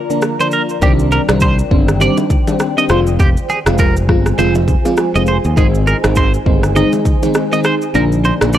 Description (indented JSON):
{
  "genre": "afrobeats",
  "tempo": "101 BPM",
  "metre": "4/4",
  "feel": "swing 58% on 16ths",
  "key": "unclear",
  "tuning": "A4 = 438 Hz",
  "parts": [
    { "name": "ethereal airy pad", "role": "sustained chords", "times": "0.0-8.6 s", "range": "Eb3 to Bb5", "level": "-22 LUFS", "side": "right 2 dB", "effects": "ensemble chorus, built-in reverb" },
    { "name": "FM electric piano with soft pad layer", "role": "accompaniment", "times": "0.1-8.6 s", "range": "D3 to F4", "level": "-16 LUFS", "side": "left 1 dB", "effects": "chorus, phaser" },
    { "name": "afro-pop drum kit", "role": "drums", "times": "0.1-8.6 s", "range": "kick drum, rim click, shaker", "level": "-16 LUFS", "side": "equal", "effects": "none" },
    { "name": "twelve-string electric guitar", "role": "riff", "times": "0.4-8.6 s", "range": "G4 to Eb5", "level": "-19 LUFS", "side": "right 3 dB", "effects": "analog delay" },
    { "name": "modern bright fingered electric bass", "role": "bass", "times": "0.8-8.6 s", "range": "F1 to Eb2", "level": "-16 LUFS", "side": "equal", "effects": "none" },
    { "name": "congas and bongos", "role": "percussion", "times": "0.8-8.6 s", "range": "none", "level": "-25 LUFS", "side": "left 2 dB", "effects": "none" }
  ],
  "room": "little or no reverb",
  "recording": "dry, gritty hardware recording, cassette tape",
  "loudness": "-11 LUFS",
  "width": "side -11 dB against mid",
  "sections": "0.0-8.6 A section",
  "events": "break 0.0-0.8; kick muted 7.9-8.6",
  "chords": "0.0 Bb; 0.8 Cmadd9; 2.9 Fm; 5.6 Ab; 7.9 Bb"
}